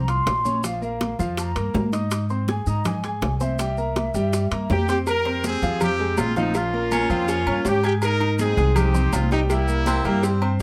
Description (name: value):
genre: latin, salsa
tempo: 163 BPM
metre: 4/4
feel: straight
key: F minor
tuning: A4 = 440 Hz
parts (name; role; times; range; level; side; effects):
- mellow hollow jazz flute; melody; 0.0-4.7 s; E5 to C6; -30 LUFS; equal; none
- upright bass; bass; 0.0-10.6 s; Bb1 to Ab2; -26 LUFS; equal; none
- bright grand piano; accompaniment; 0.1-10.6 s; F3 to Ab6; -30 LUFS; equal; none
- bongos and cowbell; percussion; 0.1-10.4 s; none; -34 LUFS; equal; none
- congas; percussion; 0.1-10.6 s; none; -33 LUFS; equal; none
- maracas; percussion; 0.1-10.6 s; none; -42 LUFS; equal; none
- timbales and agogo bells; percussion; 0.1-10.6 s; none; -34 LUFS; equal; none
- bright horn section; melody; 4.7-10.6 s; G3 to Bb4; -26 LUFS; equal; none
- warm baritone saxophone; second line; 6.9-7.6, 9.9-10.5 s; Bb3 to Db4; -28 LUFS; equal; none
room: light reverb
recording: close, detailed microphones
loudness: -22 LUFS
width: mono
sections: 0.0-5.1 A section; 5.1-10.6 B section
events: none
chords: 0.0 F5; 0.6 Bb5; 2.1 Ab; 3.6 C7; 5.1 Fmadd9; 6.5 Bbm; 8.0 Ab; 9.5 C7